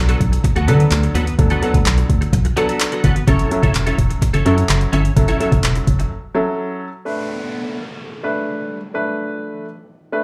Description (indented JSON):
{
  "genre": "dance-pop",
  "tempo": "127 BPM",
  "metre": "4/4",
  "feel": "straight",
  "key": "B minor",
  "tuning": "A4 = 440 Hz",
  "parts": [
    { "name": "warm baby grand piano", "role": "accompaniment", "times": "0.0-10.2 s", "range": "F#3 to B4", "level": "-24 LUFS", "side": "equal", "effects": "sidechain pumping" },
    { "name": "organ-like FM bass", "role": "bass", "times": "0.0-6.1 s", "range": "E1 to D3", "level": "-19 LUFS", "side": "equal", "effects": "sidechain pumping" },
    { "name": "twelve-string electric guitar", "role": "riff", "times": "0.1-6.0 s", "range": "B3 to A4", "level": "-26 LUFS", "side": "equal", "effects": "ensemble chorus, slapback echo" },
    { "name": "smooth R&B drum kit", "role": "drums", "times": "0.1-6.1 s", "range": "handclaps, hi-hat, kick drum", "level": "-20 LUFS", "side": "equal", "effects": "none" },
    { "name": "downlifter", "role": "sound effects", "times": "7.1-10.2 s", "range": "none", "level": "-34 LUFS", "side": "equal", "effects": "none" }
  ],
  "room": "light reverb",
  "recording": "live gig heard through the venue's PA, club reverb",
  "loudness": "-18 LUFS",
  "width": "mono",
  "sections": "0.0-7.1 A section; 7.1-10.2 B section",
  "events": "drop 0.0-7.1; break 6.1-7.1",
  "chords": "0.0 D6; 3.3 F#m7; 7.1 Bm7"
}